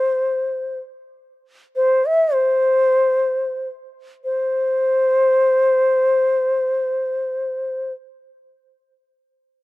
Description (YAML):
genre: indian classical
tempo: free time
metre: none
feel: none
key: unclear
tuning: A4 = 440 Hz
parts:
  - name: mellow bansuri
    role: solo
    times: 0.0-7.9 s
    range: C5 to E5-23c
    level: -16 LUFS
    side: left 1 dB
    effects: none
room: small room ambience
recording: dry, close 1970s-style studio recording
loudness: -16 LUFS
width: side -19 dB against mid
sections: 0.0-4.2 A section; 4.2-7.2 B section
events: none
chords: none